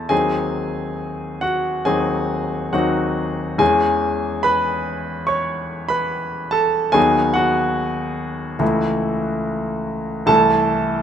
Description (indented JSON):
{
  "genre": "classical, romantic character piece for solo piano",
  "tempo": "71 BPM",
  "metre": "4/4",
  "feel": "uneven beats, rubato",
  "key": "unclear",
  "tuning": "A4 = 439 Hz",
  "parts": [
    { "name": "bright grand piano", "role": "solo", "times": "0.0-11.0 s", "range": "C2 to C#6", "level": "-18 LUFS", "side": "equal", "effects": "none" }
  ],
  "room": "moderate large studio reverb, RT60 0.9 s",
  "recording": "none",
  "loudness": "-18 LUFS",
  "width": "side -9 dB against mid",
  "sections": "0.0-11.0 A section",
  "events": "none",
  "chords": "0.1 G#7/D#; 3.6 C#m/E; 7.0 B/D#; 8.6 A/C#; 10.3 Am/C"
}